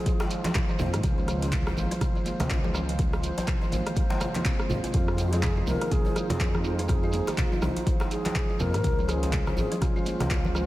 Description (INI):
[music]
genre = afro house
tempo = 123 BPM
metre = 4/4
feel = swing 59% on 16ths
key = F minor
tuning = A4 = 442 Hz
[part]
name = breathy bright bass bansuri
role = melody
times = 0.0-0.8, 4.9-10.7 s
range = F4 to Bb4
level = -33 LUFS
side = equal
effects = tape echo
[part]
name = warm analog pad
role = sustained chords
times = 0.0-10.7 s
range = Ab3 to C5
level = -35 LUFS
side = right 1 dB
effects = chorus, sidechain pumping
[part]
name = buzzing kalimba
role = arpeggios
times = 0.1-10.7 s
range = C3 to F4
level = -33 LUFS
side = equal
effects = sidechain pumping, tape echo
[part]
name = deep house drum kit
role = drums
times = 0.1-10.7 s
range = handclaps, hi-hat, rim click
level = -35 LUFS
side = equal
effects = none
[part]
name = electronic kick drum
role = drums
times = 0.1-10.4 s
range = none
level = -27 LUFS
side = equal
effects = overdrive
[part]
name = shekere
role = percussion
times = 0.1-10.7 s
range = none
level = -43 LUFS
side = right 3 dB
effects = none
[part]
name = djembe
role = percussion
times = 0.2-10.7 s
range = none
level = -37 LUFS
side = left 1 dB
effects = none
[part]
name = congas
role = percussion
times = 0.4-10.5 s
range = none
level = -34 LUFS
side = right 1 dB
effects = none
[part]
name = dark detuned saw bass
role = bass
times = 0.8-10.7 s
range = Ab1 to Ab2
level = -29 LUFS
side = equal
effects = tube saturation, sidechain pumping
[sound]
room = light reverb, small room ambience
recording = none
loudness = -24 LUFS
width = side -16 dB against mid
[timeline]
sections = 0.0-10.7 A section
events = none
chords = 0.0 Fm7; 1.0 Dbmaj7; 4.9 Fm7; 8.8 Dbmaj7